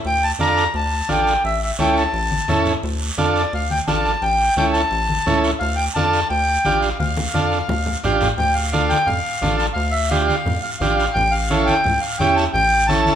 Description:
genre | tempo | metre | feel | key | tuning
latin, cumbia | 173 BPM | 4/4 | straight | D harmonic minor | A4 = 442 Hz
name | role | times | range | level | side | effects
guiro | percussion | 0.0-13.2 s | none | -29 LUFS | right 3 dB | none
accordion | melody | 0.1-13.2 s | D5 to Bb5 | -20 LUFS | left 1 dB | none
rubbery square bass | bass | 0.1-13.1 s | A1 to F2 | -24 LUFS | left 1 dB | none
combo organ | accompaniment | 0.4-13.1 s | C#4 to A4 | -22 LUFS | right 3 dB | none
congas | percussion | 0.4-13.2 s | none | -27 LUFS | left 2 dB | none
room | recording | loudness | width
moderate large studio reverb, RT60 1.2 s | minimal, uncompressed stereo recording | -16 LUFS | side -9 dB against mid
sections
0.0-8.4 A section; 8.4-13.2 B section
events
drum fill 7.0-8.4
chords
0.1 Dm; 1.4 A; 2.8 Dm; 4.2 A7; 5.6 Dm; 11.2 A7

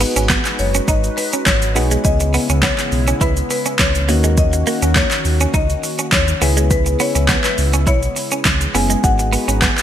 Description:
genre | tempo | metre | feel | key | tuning
dance-pop | 103 BPM | 4/4 | straight | C# dorian | A4 = 440 Hz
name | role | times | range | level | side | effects
marimba with medium mallets | melody | 0.0-9.8 s | B4 to G#5 | -23 LUFS | left 4 dB | ping-pong delay
soft electric-piano-like synth keys | accompaniment | 0.0-9.8 s | A#3 to G#4 | -24 LUFS | left 3 dB | chorus, sidechain pumping
chorused pulse-width pad | sustained chords | 0.0-9.8 s | C#3 to B4 | -26 LUFS | equal | sidechain pumping
direct-recorded clean electric guitar | riff | 0.0-9.8 s | G#3 to E4 | -24 LUFS | right 5 dB | lush chorus
sub bass with octave | bass | 0.0-9.7 s | F#1 to D#2 | -18 LUFS | equal | sidechain pumping
deep house drum kit | drums | 0.0-9.8 s | handclaps, hi-hat, kick drum, shaker, snare drum | -17 LUFS | equal | overdrive, gated reverb
room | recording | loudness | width
light reverb, digital ambience | bright 1980s-style digital production | -14 LUFS | side -10 dB against mid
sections
0.0-9.8 A section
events
none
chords
0.0 G#m7; 2.0 C#m7; 4.1 D#m7; 6.4 C#m7; 9.0 G#m7

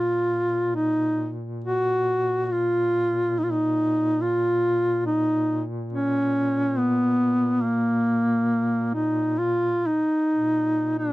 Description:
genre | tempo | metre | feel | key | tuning
caucasian folk, Caucasian lament | 69 BPM | 3/4 | uneven beats, rubato | Bb phrygian | A4 = 440 Hz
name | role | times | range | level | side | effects
warm duduk | melody | 0.0-11.1 s | Bb3 to Gb4 | -21 LUFS | equal | none
mellow duduk | drone | 0.0-11.1 s | Bb2 | -31 LUFS | equal | stereo widening
room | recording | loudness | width
light reverb | dry, close 1970s-style studio recording | -21 LUFS | side -18 dB against mid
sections
0.0-10.3 A section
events
none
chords
none

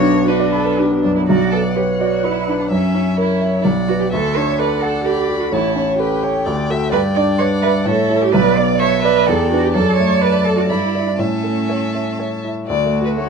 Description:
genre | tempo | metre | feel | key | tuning
quick classical-period movement for piano quartet | 116-131 BPM | 3/4 | rubato | B minor, D major from 6.9 s | A4 = 441 Hz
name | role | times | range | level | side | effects
rich violin | melody | 0.0-13.3 s | B4 to B5 | -26 LUFS | left 7 dB | none
warm cello | second line | 0.0-13.3 s | A3 to D5 | -20 LUFS | right 8 dB | none
warm violin | second line | 0.0-13.3 s | D4 to E5 | -24 LUFS | left 2 dB | none
warm baby grand piano | accompaniment | 0.0-13.3 s | A1 to B5 | -17 LUFS | equal | none
room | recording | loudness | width
light reverb | dark, warm production | -14 LUFS | side -5 dB against mid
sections
0.0-1.3 A section; 1.3-12.7 A section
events
none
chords
0.0 Bm; 2.7 F#7; 3.6 Bm; 4.1 D; 5.5 A7; 6.5 D; 6.9 Em7/G; 7.9 A; 8.3 Bm; 9.3 Em7; 9.7 D/F#; 10.7 Em7/G; 11.2 A; 12.7 D

